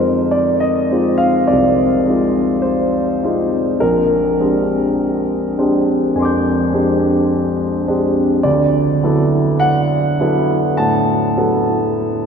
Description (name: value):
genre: classical, impressionist solo piano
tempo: 52 BPM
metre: 4/4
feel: rubato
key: unclear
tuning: A4 = 438 Hz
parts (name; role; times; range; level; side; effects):
- warm grand piano; solo; 0.0-12.3 s; Bb1 to G6; -13 LUFS; equal; none
room: wet church reverb, RT60 3.9 s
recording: minimal, uncompressed stereo recording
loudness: -13 LUFS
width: side -6 dB against mid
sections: 0.0-12.3 A section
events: none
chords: 0.0 Fm7; 3.8 Bb13; 8.4 D69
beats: 0.34 1.49 2.65 | 3.81 4.99 6.17 7.31 | 8.44 9.62 10.79 12.00